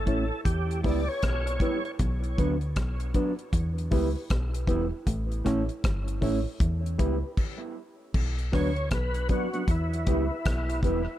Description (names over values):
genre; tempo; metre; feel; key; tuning
dub reggae; 78 BPM; 4/4; swing 63% on 16ths; unclear; A4 = 438 Hz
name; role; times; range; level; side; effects
overdriven tonewheel organ; melody; 0.0-1.9, 8.5-10.8 s; E4 to D5; -34 LUFS; equal; chorus vibrato, slow rotary speaker, dub echo
deep dub fingered electric bass; bass; 0.0-11.1 s; E1 to E2; -29 LUFS; equal; none
mellow electric guitar; accompaniment; 0.1-11.0 s; F#3 to E4; -33 LUFS; right 5 dB; dub echo
mellow reed electric piano; stabs; 0.1-11.0 s; D4 to C#5; -35 LUFS; left 6 dB; fast tremolo, dub echo
deep reggae drum kit; drums; 0.1-11.1 s; crash cymbal, hi-hat, kick drum, rim click; -28 LUFS; equal; none
room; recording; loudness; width
light reverb, small room ambience; none; -25 LUFS; side -13 dB against mid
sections
0.0-8.1 A section; 8.1-11.2 B section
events
stop 7.4-8.1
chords
0.5 Em; 2.0 Bm; 3.5 Em; 5.1 A; 6.6 Em; 8.1 Bm; 9.7 Em